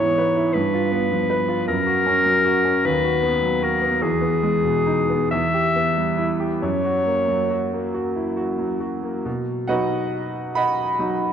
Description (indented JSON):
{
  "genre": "classical, romantic duo for clarinet and grand piano",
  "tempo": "44-54 BPM (dotted quarters)",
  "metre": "6/8",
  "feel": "rubato",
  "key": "B major",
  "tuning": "A4 = 441 Hz",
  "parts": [
    { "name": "clear clarinet", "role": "melody", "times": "0.0-7.9 s", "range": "G#4 to E5", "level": "-20 LUFS", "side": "left 2 dB", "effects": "none" },
    { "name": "clear grand piano", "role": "accompaniment", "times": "0.0-11.3 s", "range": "D#2 to B5", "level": "-21 LUFS", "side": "right 2 dB", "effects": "none" }
  ],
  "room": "wet concert hall reverb, RT60 1.9 s",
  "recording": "dark, warm production",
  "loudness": "-19 LUFS",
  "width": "side -8 dB against mid",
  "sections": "0.0-9.3 A section; 9.3-11.3 B section",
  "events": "none",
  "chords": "0.0 E/G#; 0.5 G7; 1.7 F#; 2.8 B/D#; 4.0 Emaj7; 5.3 Em; 6.6 F#; 9.3 B"
}